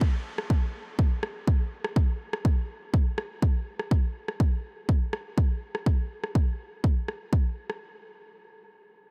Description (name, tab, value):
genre	filtered disco house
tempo	123 BPM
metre	4/4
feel	straight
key	none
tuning	none
part	electronic kick drum	drums	0.0-7.4 s	none	-25 LUFS	equal	overdrive
part	electronic rim click	drums	0.4-7.8 s	none	-40 LUFS	equal	overdrive, sidechain pumping on hats, sidechain pumping on perc
room	little or no reverb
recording	none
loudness	-28 LUFS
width	mono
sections	0.0-7.8 A section; 7.8-9.1 B section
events	none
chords	none